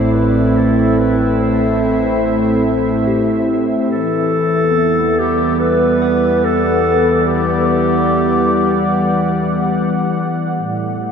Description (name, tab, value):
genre	ambient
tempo	72 BPM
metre	4/4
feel	straight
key	unclear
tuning	A4 = 439 Hz
part	warm clarinet	melody	0.0-9.7 s	G4 to C5	-18 LUFS	left 1 dB	ping-pong delay
part	warm analog pad	sustained chords	0.0-11.1 s	A2 to F#5	-14 LUFS	equal	chorus
part	soft synth bell	arpeggios	0.0-10.6 s	G4 to F#5	-32 LUFS	left 4 dB	none
part	round analog bass	bass	0.0-11.1 s	A1 to E2	-29 LUFS	equal	none
part	bowed-like drone	drone	10.9-11.1 s	A3	-35 LUFS	left 1 dB	none
room	wet huge ambient reverb, RT60 7.7 s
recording	dreamy mix soaked in reverb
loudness	-13 LUFS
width	side -6 dB against mid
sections	0.0-10.6 A section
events	fade-out on analog synth bass 0.0-10.6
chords	0.0 Am; 3.9 Em7; 10.6 N.C.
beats	| 0.57 1.41 2.24 3.08 | 3.91 4.74 5.58 6.41 | 7.24 8.07 8.91 9.74 | 10.57